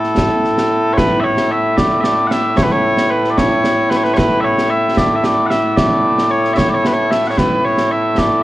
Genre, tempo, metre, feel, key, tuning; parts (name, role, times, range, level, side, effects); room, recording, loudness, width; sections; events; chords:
scottish traditional, Scottish pipe music; 75 BPM (dotted quarters); 6/8; straight; A major; A4 = 441 Hz
mellow small bagpipes; melody; 0.0-8.4 s; A2 to F#5; -13 LUFS; equal
concert snare drum and concert bass drum; drums; 0.0-8.3 s; -19 LUFS; right 1 dB
moderate concert hall reverb, RT60 2.0 s; worn, warbling old tape, cassette tape, warbly pitch drift; -12 LUFS; side -16 dB against mid
1.0-8.4 A section